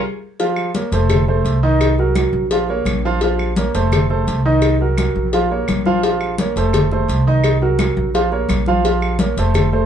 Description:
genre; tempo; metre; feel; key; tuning
latin, salsa; 170 BPM; 4/4; straight; Bb harmonic minor; A4 = 444 Hz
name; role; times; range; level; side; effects
warm concert grand piano; accompaniment; 0.4-9.9 s; Eb3 to F5; -18 LUFS; right 2 dB; none
congas; percussion; 0.4-9.9 s; none; -22 LUFS; left 2 dB; none
cowbell; percussion; 0.4-9.7 s; none; -23 LUFS; left 4 dB; none
claves; percussion; 0.6-9.7 s; none; -30 LUFS; right 1 dB; none
upright bass; bass; 0.9-9.9 s; F1 to C2; -19 LUFS; equal; none
room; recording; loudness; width
wet studio reverb, RT60 0.5 s; band playing live in one room, nothing above 10.8 kHz; -14 LUFS; side -9 dB against mid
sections
0.4-9.9 A section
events
drum fill 0.0-0.4; band accent 0.0-0.4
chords
0.4 Bbm; 1.1 F7; 1.8 Cm7b5; 2.5 Bbm; 3.9 F7; 4.6 Cm7b5; 5.3 Bbm; 6.7 F7; 7.4 Cm7b5; 8.1 Bbm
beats
0.04 | 0.39 0.74 1.09 1.45 | 1.80 2.15 2.50 2.86 | 3.21 3.56 3.91 4.27 | 4.62 4.97 5.32 5.68 | 6.03 6.38 6.73 7.08 | 7.44 7.79 8.14 8.49 | 8.84 9.19 9.54

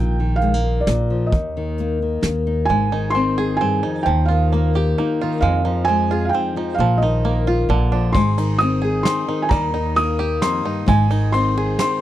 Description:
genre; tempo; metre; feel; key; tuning
acoustic folk duo or small band; 132 BPM; 3/4; straight; Eb major; A4 = 440 Hz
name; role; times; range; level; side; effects
felt-muted upright piano; melody; 0.0-12.0 s; D5 to Eb6; -22 LUFS; right 2 dB; none
nylon-string guitar; accompaniment; 0.0-12.0 s; Eb2 to Ab4; -22 LUFS; left 4 dB; none
upright bass; bass; 0.0-11.7 s; Ab1 to F2; -20 LUFS; right 1 dB; none
soft brush drum kit; drums; 0.4-2.3, 8.1-11.9 s; hi-hat, kick drum, ride cymbal, snare drum; -24 LUFS; right 1 dB; none
bluegrass banjo; arpeggios; 2.7-12.0 s; D3 to Ab4; -27 LUFS; right 8 dB; none
room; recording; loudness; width
little or no reverb; dry, close 1970s-style studio recording; -16 LUFS; side -13 dB against mid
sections
0.0-2.7 A section; 2.7-12.0 B section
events
none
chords
0.0 Bbsus4; 0.9 Bb; 1.3 Eb5; 2.7 Ab; 4.1 Ebadd9; 5.4 Fm7; 6.8 Bbsus4; 7.7 Bb; 8.1 Ab; 9.5 Eb; 10.9 Ab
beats
0.41 0.87 | 1.33 1.78 2.24 | 2.69 3.15 3.60 | 4.05 4.51 4.96 | 5.42 5.87 6.33 | 6.78 7.24 7.69 | 8.14 8.60 9.05 | 9.51 9.96 10.42 | 10.87 11.32 11.78

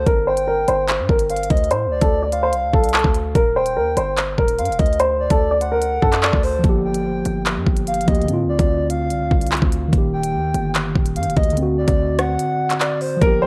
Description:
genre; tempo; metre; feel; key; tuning
hip hop, drill; 146 BPM; 4/4; half-time; unclear; A4 = 440 Hz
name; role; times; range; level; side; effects
clear upright piano; melody; 0.0-6.6, 13.2-13.5 s; A4 to D5; -22 LUFS; equal; low-pass filter, cassette tape, tape echo
breathy flute-like synth lead; second line; 0.0-13.5 s; C5 to G5; -26 LUFS; equal; chorus, cassette tape, tape echo
hard-hitting 808-style bass; bass; 0.0-13.5 s; Eb1 to A2; -27 LUFS; equal; none
drill drum kit; drums; 0.1-13.3 s; handclaps, hi-hat, kick drum, rim click; -21 LUFS; equal; cassette tape
mellow tine electric piano; accompaniment; 6.6-13.5 s; D3 to G4; -24 LUFS; equal; low-pass filter, cassette tape
room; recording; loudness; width
moderate spring reverb, RT60 1.6 s, digital ambience; home recording on cassette; -19 LUFS; mono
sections
0.0-13.5 A section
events
filter sweep 0.0-6.6; break 12.4-13.2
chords
0.1 Gm; 1.7 Dm7; 3.4 Eb; 5.0 D; 6.6 Gm7; 8.3 Dm7; 9.9 Eb; 11.6 D7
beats
| 0.07 0.48 0.89 1.30 | 1.71 2.12 2.53 2.94 | 3.35 3.76 4.17 4.58 | 5.00 5.41 5.82 6.23 | 6.64 7.05 7.46 7.87 | 8.28 8.70 9.11 9.52 | 9.93 10.34 10.75 11.16 | 11.57 11.98 12.39 12.80 | 13.21

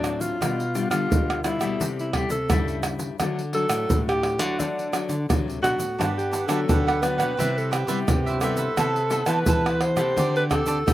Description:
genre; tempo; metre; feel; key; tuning
samba and choro; 86 BPM; 4/4; straight; G major; A4 = 441 Hz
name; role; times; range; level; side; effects
warm alto saxophone; melody; 0.0-10.9 s; D4 to C5; -26 LUFS; equal; none
nylon-string guitar; accompaniment; 0.0-10.9 s; G2 to A4; -30 LUFS; left 6 dB; slapback echo
nylon-string guitar; bass; 0.0-10.9 s; G2 to E3; -29 LUFS; equal; none
egg shaker, pandeiro, tamborim and surdo; percussion; 0.0-10.9 s; none; -25 LUFS; right 1 dB; none
cavaquinho; accompaniment; 6.0-10.8 s; D4 to A5; -28 LUFS; right 5 dB; slapback echo
room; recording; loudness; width
little or no reverb; recorded outdoors, with no room sound; -21 LUFS; side -14 dB against mid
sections
0.0-10.9 A section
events
none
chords
0.4 G7/B; 1.8 C6; 3.2 D; 6.0 Gmaj7; 7.4 Cmaj7; 8.8 Amadd9/C; 10.2 D7sus4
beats
| 0.41 1.11 1.81 2.50 | 3.20 3.90 4.60 5.29 | 5.99 6.69 7.38 8.08 | 8.78 9.48 10.17 10.87

